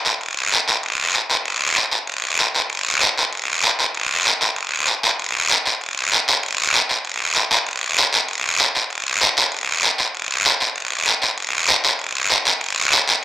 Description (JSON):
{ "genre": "latin", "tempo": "194 BPM", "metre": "4/4", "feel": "straight", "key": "none", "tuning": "none", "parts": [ { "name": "guiro", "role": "percussion", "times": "0.1-13.2 s", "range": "none", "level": "-16 LUFS", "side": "equal", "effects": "none" } ], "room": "light reverb", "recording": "dry, close 1970s-style studio recording", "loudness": "-16 LUFS", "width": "side -14 dB against mid", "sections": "0.0-5.2 A section; 5.2-13.2 B section", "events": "none", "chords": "none", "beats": "| 0.21 0.53 0.84 1.15 | 1.46 1.77 2.08 2.39 | 2.71 3.02 3.33 3.64 | 3.95 4.26 4.57 4.88 | 5.19 5.50 5.81 6.12 | 6.43 6.74 7.05 7.36 | 7.67 7.98 8.29 8.60 | 8.91 9.22 9.53 9.84 | 10.14 10.45 10.76 11.07 | 11.38 11.69 12.00 12.31 | 12.62 12.93" }